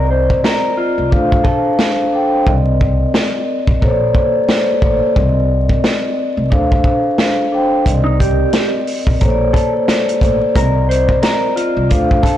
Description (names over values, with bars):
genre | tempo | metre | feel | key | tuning
hip hop, boom-bap hip-hop | 89 BPM | 4/4 | swing 58% on 16ths | C dorian | A4 = 438 Hz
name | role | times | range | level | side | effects
mellow electric guitar | melody | 0.0-1.9, 8.0-12.4 s | Eb4 to C5 | -20 LUFS | right 1 dB | spring reverb, high-pass filter, low-pass filter, ping-pong delay
vibraphone with medium mallets | accompaniment | 0.0-12.4 s | Bb3 to G5 | -16 LUFS | left 1 dB | high-pass filter, low-pass filter
upright bass | bass | 0.0-12.2 s | A1 to D2 | -18 LUFS | equal | tube saturation
vintage drum kit | drums | 0.3-12.4 s | hi-hat, kick drum, snare drum | -16 LUFS | equal | vintage 12-bit sampler grit
room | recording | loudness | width
light reverb, studio reverb | blown-out, overdriven recording, vinyl crackle, overdrive | -12 LUFS | side -12 dB against mid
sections
0.0-12.4 A section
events
break 0.0-7.9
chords
0.0 Cm9; 1.1 Dm7; 2.5 Cm9; 3.8 Bbmaj9; 5.2 Cm9; 6.5 Dm7; 7.9 Cm9; 9.2 Bbmaj9; 10.6 Cm9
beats
0.44 1.12 1.79 | 2.46 3.14 3.81 4.49 | 5.16 5.84 6.51 7.18 | 7.86 8.53 9.21 9.88 | 10.55 11.23 11.90